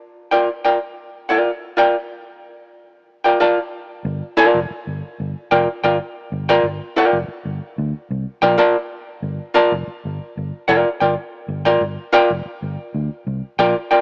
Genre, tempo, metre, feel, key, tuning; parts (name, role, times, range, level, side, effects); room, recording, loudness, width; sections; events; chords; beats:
funk; 93 BPM; 4/4; straight; G minor; A4 = 445 Hz
archtop guitar, miked and amplified; accompaniment; 0.3-14.0 s; F4 to A5; -15 LUFS; equal
vintage muted fingered electric bass; bass; 4.0-13.7 s; F1 to D2; -24 LUFS; equal
light reverb; small speaker sound; -16 LUFS; side -33 dB against mid
0.0-4.1 A section; 4.1-14.0 B section
0.0 Gm7
0.16 0.81 | 1.46 2.10 2.75 3.40 | 4.05 4.70 5.35 5.99 | 6.64 7.29 7.93 8.58 | 9.22 9.87 10.52 11.16 | 11.81 12.45 13.10 13.74